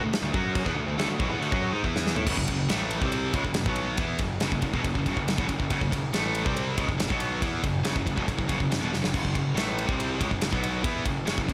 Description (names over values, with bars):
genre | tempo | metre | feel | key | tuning
heavy metal | 140 BPM | 4/4 | straight | F# minor | A4 = 440 Hz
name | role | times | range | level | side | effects
high-gain distorted guitar | riff | 0.0-11.5 s | E2 to F#4 | -31 LUFS | equal | distortion
fuzz picked electric bass | bass | 0.0-11.5 s | E1 to A2 | -34 LUFS | equal | overdrive
big rock drum kit | drums | 0.1-11.5 s | china cymbal, crash cymbal, kick drum, ride cymbal, snare drum, toms | -32 LUFS | equal | none
room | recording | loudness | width
little or no reverb | none | -27 LUFS | mono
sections
0.0-2.3 A section; 2.3-11.5 B section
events
drum fill 1.8-2.3, 8.9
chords
0.0 D5; 2.3 F#m